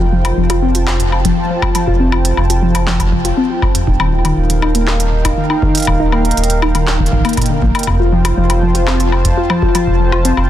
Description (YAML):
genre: IDM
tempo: 120 BPM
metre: 4/4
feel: straight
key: unclear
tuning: A4 = 437 Hz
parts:
  - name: warm analog pad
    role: sustained chords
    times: 0.0-10.5 s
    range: Eb4 to A5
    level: -19 LUFS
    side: right 1 dB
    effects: chorus
  - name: warbly dusty pluck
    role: arpeggios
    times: 0.0-10.5 s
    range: Eb2 to F4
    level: -17 LUFS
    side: left 2 dB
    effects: chorus, phaser, digital delay
  - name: warm sub bass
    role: bass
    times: 0.0-10.5 s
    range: Eb1 to Bb1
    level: -15 LUFS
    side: equal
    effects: none
  - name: organic electronic drum kit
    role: drums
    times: 0.2-10.5 s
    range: handclaps, hi-hat, woodblock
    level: -20 LUFS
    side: left 2 dB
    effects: studio reverb, digital delay
  - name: electronic kick drum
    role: drums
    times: 1.2-10.0 s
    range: none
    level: -18 LUFS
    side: equal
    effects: studio reverb
room: light reverb, digital ambience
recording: dense, heavily limited modern master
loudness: -11 LUFS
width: side -12 dB against mid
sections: 0.0-10.5 A section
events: filter sweep on synth pluck 0.0-10.5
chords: 0.0 Fadd9; 3.9 Ebadd9; 7.9 Fadd9